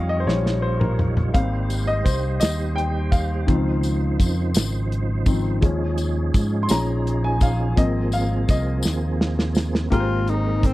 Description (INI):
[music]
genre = slow gospel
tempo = 56 BPM (dotted quarters)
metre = 6/8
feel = straight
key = Ab major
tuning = A4 = 440 Hz
[part]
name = warm concert grand piano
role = accompaniment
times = 0.0-10.7 s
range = Ab2 to C6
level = -26 LUFS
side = left 2 dB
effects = none
[part]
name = tonewheel organ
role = sustained chords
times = 0.0-10.7 s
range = Db3 to Db5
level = -29 LUFS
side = right 4 dB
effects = fast rotary speaker, chorus vibrato
[part]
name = fingered electric bass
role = bass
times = 0.0-10.7 s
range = Ab1 to Ab2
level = -23 LUFS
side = equal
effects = none
[part]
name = warm soul drum kit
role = drums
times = 0.3-10.7 s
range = hi-hat, kick drum, snare drum, toms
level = -20 LUFS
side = equal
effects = none
[part]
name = tambourine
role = percussion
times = 1.7-9.9 s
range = none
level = -34 LUFS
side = left 6 dB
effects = none
[part]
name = breathy tenor saxophone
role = melody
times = 9.9-10.7 s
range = C4 to F4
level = -24 LUFS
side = left 3 dB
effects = none
[sound]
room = little or no reverb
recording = dry, close 1970s-style studio recording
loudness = -19 LUFS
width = side -17 dB against mid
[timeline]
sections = 0.0-9.9 A section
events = grand piano solo 0.0-9.9; drum fill 0.3-1.3, 8.8-9.9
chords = 0.0 Eb9; 1.3 Abmaj7; 3.5 Dbmaj9; 5.6 Eb9sus4; 7.8 Ab69; 9.9 Abmaj9